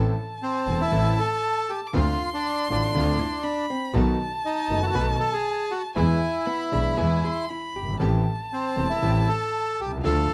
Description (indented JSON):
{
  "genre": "tango",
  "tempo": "118 BPM",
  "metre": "4/4",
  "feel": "rubato",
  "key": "A minor",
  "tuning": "A4 = 441 Hz",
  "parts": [
    { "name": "warm violin", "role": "second line", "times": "0.0-10.3 s", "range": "F5 to D6", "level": "-33 LUFS", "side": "equal", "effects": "none" },
    { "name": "warm concert grand piano", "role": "accompaniment", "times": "0.0-10.3 s", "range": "E1 to A4", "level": "-30 LUFS", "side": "equal", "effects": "none" },
    { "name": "rich studio string section", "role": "stabs", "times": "0.0-10.3 s", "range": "G#3 to A4", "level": "-38 LUFS", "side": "equal", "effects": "none" },
    { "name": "clear double bass", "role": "bass", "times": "0.0-10.3 s", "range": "E1 to E2", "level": "-28 LUFS", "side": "equal", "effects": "none" },
    { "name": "bandoneon", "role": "melody", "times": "0.4-10.3 s", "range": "C4 to B4", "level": "-29 LUFS", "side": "equal", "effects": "none" },
    { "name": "hollow-body jazz guitar", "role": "second line", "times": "3.2-8.4 s", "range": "B3 to G#4", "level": "-36 LUFS", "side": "equal", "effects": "none" }
  ],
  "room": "light reverb",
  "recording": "close, detailed microphones, vinyl crackle",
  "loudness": "-25 LUFS",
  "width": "mono",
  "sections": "0.0-10.3 A section",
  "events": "none",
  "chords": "0.0 Am; 1.9 Dm7; 3.9 B7; 6.0 E; 8.0 Am7"
}